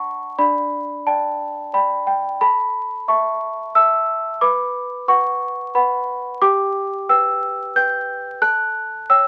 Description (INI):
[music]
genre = classical, lullaby for celesta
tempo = 90 BPM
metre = 3/4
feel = rubato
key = unclear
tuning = A4 = 440 Hz
[part]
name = celesta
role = solo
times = 0.0-9.3 s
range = D4 to G6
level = -19 LUFS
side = equal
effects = none
[sound]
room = light reverb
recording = very old 78 rpm record, vinyl crackle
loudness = -20 LUFS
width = mono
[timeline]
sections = 0.0-9.3 A section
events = none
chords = 0.4 G/D; 2.4 A; 4.4 Bm; 6.4 Em/G; 8.4 A7